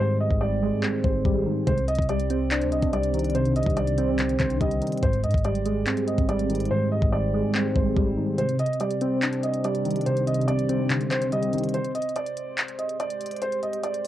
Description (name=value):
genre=hip hop, trap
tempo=143 BPM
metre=4/4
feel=half-time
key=C minor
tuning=A4 = 441 Hz
part: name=felt-muted upright piano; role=melody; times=0.0-14.1 s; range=C5 to Eb5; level=-29 LUFS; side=right 1 dB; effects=low-pass filter, cassette tape
part: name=soft electric-piano-like synth keys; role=accompaniment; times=0.0-11.8 s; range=Ab2 to D4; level=-24 LUFS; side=equal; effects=chorus, phaser, low-pass filter, cassette tape
part: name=long sustained 808-style bass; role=bass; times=0.3-8.2 s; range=Ab1 to Ab2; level=-30 LUFS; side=left 1 dB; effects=none
part: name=trap drum kit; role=drums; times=0.3-14.1 s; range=handclaps, hi-hat, kick drum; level=-27 LUFS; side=left 1 dB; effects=cassette tape
part: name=deep dark ambient pad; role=sustained chords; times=9.7-14.1 s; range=C3 to C5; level=-36 LUFS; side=equal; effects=chorus, built-in reverb, cassette tape
room=moderate booth ambience, RT60 0.3 s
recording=home recording on cassette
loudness=-22 LUFS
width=side -13 dB against mid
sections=0.0-14.1 A section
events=break 0.0-1.7, 8.4-14.1; hi-hats muted 6.7-8.4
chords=0.0 Abmaj7; 1.7 Cmadd9; 5.0 Abmaj7; 8.4 Cmadd9; 11.7 Abmaj7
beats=0.41 0.83 1.25 | 1.67 2.09 2.51 2.93 | 3.35 3.77 4.19 4.61 | 5.03 5.45 5.87 6.29 | 6.71 7.13 7.54 7.96 | 8.38 8.80 9.22 9.64 | 10.06 10.48 10.90 11.32 | 11.74 12.16 12.58 13.00 | 13.42 13.84